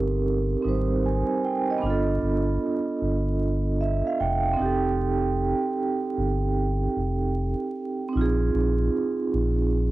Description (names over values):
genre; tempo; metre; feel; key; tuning
hip hop; 76 BPM; 4/4; swing 66% on 16ths; unclear; A4 = 440 Hz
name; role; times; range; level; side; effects
vibraphone with medium mallets; accompaniment; 0.0-9.9 s; G3 to Ab5; -24 LUFS; right 3 dB; cassette tape, low-pass filter
sub bass with octave; bass; 0.0-9.9 s; F1 to Bb1; -26 LUFS; equal; none
room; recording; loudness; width
light reverb; home recording on cassette, vinyl crackle; -22 LUFS; side -16 dB against mid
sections
0.0-9.9 A section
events
vibraphone fill 3.4-5.0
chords
0.0 Abmaj7; 1.8 G7; 4.6 F7; 8.1 Bb7sus4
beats
0.25 1.04 | 1.82 2.62 3.40 4.19 | 4.98 5.77 6.56 7.35 | 8.14 8.93 9.72